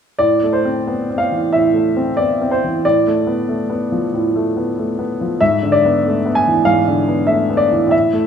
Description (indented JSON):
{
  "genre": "classical, romantic character piece for solo piano",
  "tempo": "94 BPM",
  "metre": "4/4",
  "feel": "rubato",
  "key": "A minor",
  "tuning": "A4 = 441 Hz",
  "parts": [
    { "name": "clear grand piano", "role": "solo", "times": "0.2-8.3 s", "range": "G#2 to G#5", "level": "-14 LUFS", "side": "equal", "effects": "none" }
  ],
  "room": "moderate recital hall reverb, RT60 1.3 s",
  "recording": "minimal, uncompressed stereo recording",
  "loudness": "-14 LUFS",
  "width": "side -7 dB against mid",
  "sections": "0.2-8.3 A section",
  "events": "none",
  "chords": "0.2 Am; 2.8 Bm7b5/A; 5.4 E7/G#"
}